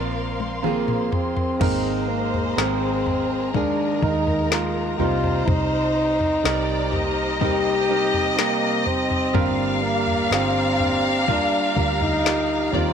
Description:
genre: pop ballad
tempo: 62 BPM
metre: 4/4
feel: straight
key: unclear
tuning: A4 = 440 Hz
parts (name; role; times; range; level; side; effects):
- warm grand piano; accompaniment; 0.0-12.9 s; G2 to D5; -27 LUFS; right 13 dB; none
- warm studio string section; sustained chords; 0.0-12.9 s; Eb4 to C6; -31 LUFS; left 1 dB; none
- nylon-string guitar; arpeggios; 0.0-12.9 s; C3 to Ab4; -31 LUFS; left 10 dB; none
- vintage muted fingered electric bass; bass; 0.0-12.9 s; G1 to Eb2; -29 LUFS; right 1 dB; none
- smooth R&B drum kit; drums; 0.4-12.9 s; crash cymbal, kick drum, snare drum, toms; -26 LUFS; left 2 dB; none
- warm French horn; melody; 0.7-12.9 s; Bb3 to G4; -24 LUFS; left 2 dB; none
- warm symphonic violin section; second line; 1.6-12.9 s; Bb4 to F5; -26 LUFS; left 1 dB; none
room: moderate spring reverb, RT60 2.3 s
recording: 1960s-style stereo with parts hard left and right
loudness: -19 LUFS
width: side -7 dB against mid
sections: 0.0-1.6 A section; 1.6-12.9 B section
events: drum fill 0.0-1.6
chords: 0.0 Bbsus2; 1.6 Absus2; 5.0 Cm7; 9.3 Gm7

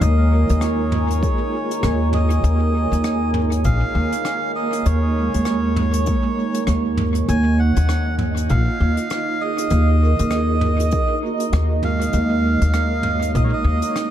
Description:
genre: ambient dub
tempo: 99 BPM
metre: 4/4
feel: swing 59% on 16ths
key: unclear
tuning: A4 = 438 Hz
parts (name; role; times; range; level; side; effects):
- melodica; melody; 0.0-14.1 s; Db5 to Ab5; -26 LUFS; right 2 dB; dub echo
- deep dark ambient pad; sustained chords; 0.0-14.1 s; Eb4 to Ab5; -28 LUFS; right 1 dB; chorus, built-in reverb
- vibraphone with medium mallets; arpeggios; 0.0-14.1 s; Ab3 to Db6; -27 LUFS; right 3 dB; tape echo
- upright bass; bass; 0.0-13.8 s; Bb1 to Eb2; -18 LUFS; equal; none
- soft brush drum kit; drums; 0.0-14.1 s; hi-hat, rim click, toms; -30 LUFS; equal; dub echo
- electronic kick drum; drums; 1.2-13.5 s; none; -22 LUFS; left 1 dB; overdrive
- bubbling stepped-filter texture; texture; 7.5-14.1 s; Eb4 to Eb5; -31 LUFS; left 1 dB; chorus, built-in reverb
room: small room reverb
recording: dark, warm production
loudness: -17 LUFS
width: side -11 dB against mid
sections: 0.0-14.1 A section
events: none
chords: 0.0 Bbm7; 7.3 Ebm7

